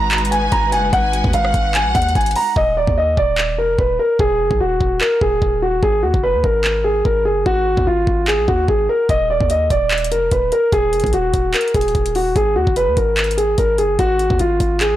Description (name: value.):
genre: hip hop, trap.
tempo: 147 BPM.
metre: 4/4.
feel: half-time.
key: unclear.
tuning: A4 = 440 Hz.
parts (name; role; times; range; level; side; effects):
dark grand piano; melody; 0.0-15.0 s; F4 to Bb5; -16 LUFS; equal; low-pass filter, ping-pong delay.
warm studio violin section; second line; 0.0-2.5 s; Gb5 to Bb5; -27 LUFS; equal; ping-pong delay.
dark studio string section; sustained chords; 0.0-2.5 s; Ab3 to Cb5; -26 LUFS; equal; none.
warm 808-style bass; bass; 0.0-15.0 s; Eb1 to Eb2; -22 LUFS; equal; none.
trap drum kit; drums; 0.1-14.9 s; handclaps, hi-hat, kick drum, rim click; -21 LUFS; equal; none.
room: small room ambience.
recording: blown-out, overdriven recording, overdrive.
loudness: -14 LUFS.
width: side -13 dB against mid.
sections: 0.0-2.6 A section; 2.6-15.0 B section.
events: hi-hats muted 2.6-9.1.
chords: 0.0 Abm7; 2.6 N.C.; 5.8 Ab5; 9.1 N.C.; 12.4 Ab5.